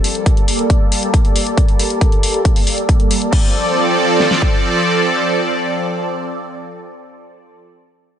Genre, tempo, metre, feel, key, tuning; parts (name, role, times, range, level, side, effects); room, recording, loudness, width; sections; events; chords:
uplifting trance; 137 BPM; 4/4; straight; D minor; A4 = 440 Hz
supersaw pad; sustained chords; 0.0-7.6 s; F3 to D5; -16 LUFS; right 1 dB; phaser, sidechain pumping, low-pass filter
big-room dance drum kit; drums; 0.0-3.4 s; crash cymbal, hi-hat; -22 LUFS; left 2 dB
big-room dance drum kit; drums; 0.3-4.5 s; kick drum, snare drum; -14 LUFS; equal
light reverb, digital ambience; nothing above 10.4 kHz; -13 LUFS; side -9 dB against mid
0.0-3.3 A section; 3.3-6.8 B section
filter sweep on supersaw synth 0.0-3.3
0.0 Gmadd9; 3.3 Dm7